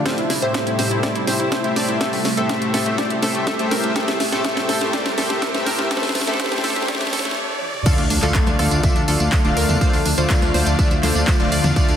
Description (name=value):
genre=progressive house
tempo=123 BPM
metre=4/4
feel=straight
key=D minor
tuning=A4 = 440 Hz
part: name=airy breathy pad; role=sustained chords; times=0.0-12.0 s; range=C3 to A4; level=-28 LUFS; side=right 1 dB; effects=chorus, phaser, sidechain pumping
part: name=analog pluck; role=arpeggios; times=0.0-12.0 s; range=A3 to D5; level=-26 LUFS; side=equal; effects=chorus, sidechain pumping, tape echo
part: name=soft supersaw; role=stabs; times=0.0-11.9 s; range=A2 to F5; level=-22 LUFS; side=left 2 dB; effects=sidechain pumping, low-pass filter, tape echo
part: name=riser and impact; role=sound effects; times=0.3-9.8 s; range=none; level=-30 LUFS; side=right 1 dB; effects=none
part: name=electronic kick drum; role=drums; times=0.1-11.9 s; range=none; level=-19 LUFS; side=equal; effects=overdrive, high-pass filter on kick, high-pass filter on room
part: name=house drum kit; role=drums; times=0.1-12.0 s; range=crash cymbal, handclaps, hi-hat, rim click, snare drum, toms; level=-24 LUFS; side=right 1 dB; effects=overdrive, sidechain pumping on hats, sidechain pumping on toms, sidechain pumping on cymbals
part: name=tambourine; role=percussion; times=7.9-12.0 s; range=none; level=-30 LUFS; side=right 3 dB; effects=none
part: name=dark detuned saw bass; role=bass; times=8.0-12.0 s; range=D1 to E2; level=-22 LUFS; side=equal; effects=sidechain pumping
part: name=electronic toms and congas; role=percussion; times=8.5-11.7 s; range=none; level=-28 LUFS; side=left 1 dB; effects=none
room=moderate lush hall reverb, RT60 1.9 s, digital ambience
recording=dense, heavily limited modern master, high-pass filter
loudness=-17 LUFS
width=side -9 dB against mid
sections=0.0-7.9 A section; 7.9-12.0 B section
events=build-up 0.0-7.9; drum fill 0.0-7.4, 7.6; filter sweep on supersaw synth 0.0-7.9; filter sweep 0.0-7.9; stop 7.4-7.9; drop 7.9-12.0; impact 7.9-9.8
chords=0.1 Am7; 7.9 Dm